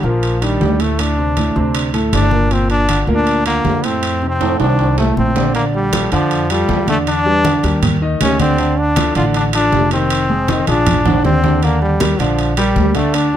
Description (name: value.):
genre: latin, salsa.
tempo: 158 BPM.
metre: 4/4.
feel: straight.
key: Bb major.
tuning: A4 = 440 Hz.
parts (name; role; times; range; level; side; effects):
brilliant trombone; melody; 0.0-13.4 s; F3 to F4; -18 LUFS; left 1 dB; plate reverb.
warm concert grand piano; accompaniment; 0.0-13.4 s; A2 to Eb5; -19 LUFS; equal; none.
upright bass; bass; 0.0-13.4 s; F1 to F2; -18 LUFS; equal; none.
congas; percussion; 0.0-13.4 s; none; -21 LUFS; equal; none.
timbales; percussion; 0.2-13.3 s; none; -23 LUFS; right 4 dB; none.
room: light reverb.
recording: close, detailed microphones.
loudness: -13 LUFS.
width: side -10 dB against mid.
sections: 0.0-5.6 A section; 5.6-13.4 A section.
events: drum fill 4.4-5.6, 11.1-11.6.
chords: 0.0 Ebmaj7; 1.0 D5; 2.5 Gm9; 4.0 F6; 5.6 Bbmaj7; 7.1 Em7; 7.8 Eb; 8.6 Dm; 10.1 Fm7; 10.9 Bb9; 11.6 Ebmaj7.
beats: 0.23 0.61 | 0.99 1.37 1.75 2.13 | 2.51 2.89 3.27 3.65 | 4.03 4.41 4.79 5.17 | 5.55 5.93 6.31 6.69 | 7.07 7.45 7.83 8.21 | 8.59 8.97 9.35 9.73 | 10.11 10.49 10.87 11.24 | 11.62 12.00 12.38 12.76 | 13.14.